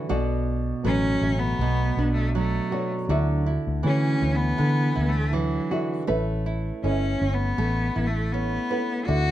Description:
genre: pop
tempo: 80 BPM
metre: 4/4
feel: swing 55% on 16ths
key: unclear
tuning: A4 = 439 Hz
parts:
  - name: dark upright piano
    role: accompaniment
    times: 0.0-9.3 s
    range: A3 to F#5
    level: -33 LUFS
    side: left 3 dB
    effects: none
  - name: nylon-string guitar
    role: accompaniment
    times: 0.0-9.3 s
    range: B2 to B4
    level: -28 LUFS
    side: right 5 dB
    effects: none
  - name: vintage muted fingered electric bass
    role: bass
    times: 0.1-9.3 s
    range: G1 to D3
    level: -25 LUFS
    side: equal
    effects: none
  - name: rich cello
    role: melody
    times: 0.9-9.3 s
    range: F#3 to F#4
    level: -27 LUFS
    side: left 2 dB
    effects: none
room: light reverb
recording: dark, warm production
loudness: -22 LUFS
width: side -13 dB against mid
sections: 0.0-9.3 A section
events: none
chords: 0.1 Bm7; 3.1 Dadd9; 6.1 Aadd9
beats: | 0.11 0.86 1.60 2.35 | 3.10 3.84 4.59 5.34 | 6.09 6.83 7.58 8.33 | 9.08

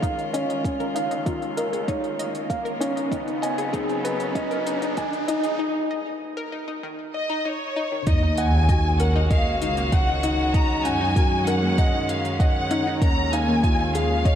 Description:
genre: piano and strings electronica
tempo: 97 BPM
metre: 4/4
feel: straight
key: Eb minor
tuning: A4 = 440 Hz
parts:
  - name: warm string quartet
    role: sustained chords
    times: 0.0-14.4 s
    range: Db3 to Gb4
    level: -32 LUFS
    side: equal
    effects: sidechain pumping, shimmer reverb
  - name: analog pluck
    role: arpeggios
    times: 0.0-14.3 s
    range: Eb3 to Eb5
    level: -32 LUFS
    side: left 2 dB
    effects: chorus, phaser, sidechain pumping, digital delay, shimmer reverb
  - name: dark concert grand piano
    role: riff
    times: 0.0-14.4 s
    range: Db4 to Ab5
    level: -27 LUFS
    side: equal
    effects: digital delay, shimmer reverb
  - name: warm symphonic double bass section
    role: bass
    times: 0.0-14.4 s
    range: Db2 to Gb2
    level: -26 LUFS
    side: equal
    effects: sidechain pumping, high-pass filter
  - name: electronic hi-hat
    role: drums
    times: 0.0-14.4 s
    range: none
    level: -39 LUFS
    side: equal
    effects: studio reverb
  - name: electronic kick drum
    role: drums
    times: 0.0-14.4 s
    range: none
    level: -22 LUFS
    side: equal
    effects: studio reverb
  - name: riser and sub drop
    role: sound effects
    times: 1.2-10.5 s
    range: none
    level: -32 LUFS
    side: equal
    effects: none
  - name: warm studio violin section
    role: melody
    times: 7.1-14.4 s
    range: Db5 to Bb5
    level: -26 LUFS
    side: left 1 dB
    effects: shimmer reverb
room: moderate concert hall reverb, RT60 2.5 s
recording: dark, warm production, high-pass filter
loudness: -21 LUFS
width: side -10 dB against mid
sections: 0.0-8.1 A section; 8.1-14.4 B section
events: build-up 0.0-8.1; filter sweep on synth arpeggio sound 0.0-8.1; filter sweep 0.0-8.1; riser 1.2-5.6; break 5.6-8.1; drop 8.1-14.4; impact 8.1-10.5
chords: 0.0 Db; 3.1 Abm; 8.1 Ebm; 13.0 Db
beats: 0.03 | 0.65 1.27 1.89 2.50 | 3.12 3.74 4.36 4.98 | 5.60 6.21 6.83 7.45 | 8.07 8.69 9.31 9.93 | 10.54 11.16 11.78 12.40 | 13.02 13.64 14.26

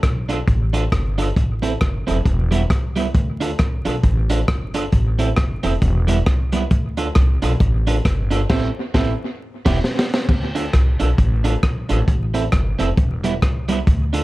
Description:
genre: ska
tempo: 134 BPM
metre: 4/4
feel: swing 59% on 8ths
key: D dorian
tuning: A4 = 440 Hz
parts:
  - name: upright bass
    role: bass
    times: 0.0-14.2 s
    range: E1 to D2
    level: -20 LUFS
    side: equal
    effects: none
  - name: crunchy breakbeat drum kit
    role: drums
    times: 0.0-14.2 s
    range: crash cymbal, hi-hat, kick drum, rim click, snare drum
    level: -19 LUFS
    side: equal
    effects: analog delay
  - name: electric guitar at the edge of break-up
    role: accompaniment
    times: 0.3-14.2 s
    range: G3 to A4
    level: -24 LUFS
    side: right 4 dB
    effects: none
room: small room ambience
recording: dark, warm production, vinyl crackle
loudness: -16 LUFS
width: side -18 dB against mid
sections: 0.0-10.3 A section; 10.3-14.2 A section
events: band accent 8.5-10.3; drum fill 9.4-10.3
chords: 0.0 Dm; 1.4 Am; 2.3 Em; 3.1 Dm; 4.9 Am; 5.8 Em; 6.7 Dm; 8.5 Am; 9.4 Em; 9.8 N.C.; 10.3 Dm; 12.1 Am; 13.0 Em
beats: 0.03 0.47 0.92 | 1.37 1.81 2.26 2.70 | 3.15 3.59 4.04 4.49 | 4.93 5.38 5.82 6.27 | 6.71 7.16 7.61 8.05 | 8.50 8.95 9.39 9.84 | 10.29 10.73 11.18 11.63 | 12.08 12.53 12.97 13.42 | 13.87

